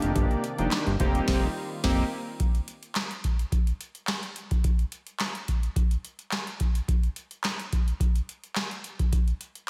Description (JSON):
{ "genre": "early-eighties boogie funk", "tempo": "107 BPM", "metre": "4/4", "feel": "straight", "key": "unclear", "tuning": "A4 = 440 Hz", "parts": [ { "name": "chorused polysynth", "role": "accompaniment", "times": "0.0-2.0 s", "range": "Bb3 to G4", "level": "-31 LUFS", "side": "equal", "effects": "slapback echo" }, { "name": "warm analog pad", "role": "sustained chords", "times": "0.0-2.4 s", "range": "C3 to D5", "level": "-40 LUFS", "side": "equal", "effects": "lush chorus" }, { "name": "fat analog bass", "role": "bass", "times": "0.0-2.0 s", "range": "F1 to G1", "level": "-30 LUFS", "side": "equal", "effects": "none" }, { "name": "booming analog drum machine", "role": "drums", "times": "0.0-9.7 s", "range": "crash cymbal, handclaps, hi-hat, kick drum, snare drum", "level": "-29 LUFS", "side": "equal", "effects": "none" } ], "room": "light reverb", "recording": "none", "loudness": "-28 LUFS", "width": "mono", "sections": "0.0-2.4 A section; 2.4-9.7 B section", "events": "band accent 1.3-2.4", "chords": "0.0 Cm9; 1.0 F9sus4; 2.4 N.C.", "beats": "| 0.15 0.71 1.28 1.84 | 2.40 2.96 3.52 4.08 | 4.64 5.20 5.76 6.32 | 6.88 7.44 8.01 8.57 | 9.13" }